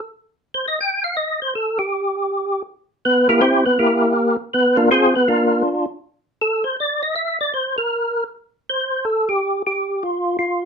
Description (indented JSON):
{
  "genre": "jazz",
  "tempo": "160 BPM",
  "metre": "4/4",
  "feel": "swing 65% on 8ths",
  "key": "unclear",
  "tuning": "A4 = 442 Hz",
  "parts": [
    { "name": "percussive tonewheel organ", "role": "solo", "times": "0.5-10.7 s", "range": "Bb3 to G5", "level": "-17 LUFS", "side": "equal", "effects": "slow rotary speaker, chorus vibrato" }
  ],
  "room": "moderate studio ambience, RT60 0.5 s",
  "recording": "none",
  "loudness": "-17 LUFS",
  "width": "side -6 dB against mid",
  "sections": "0.0-8.6 A section; 8.6-10.7 B section",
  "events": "tonewheel organ solo 0.0-8.6",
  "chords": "0.0 N.C.; 2.7 C7; 4.2 Bb9; 5.7 Adim; 7.1 N.C."
}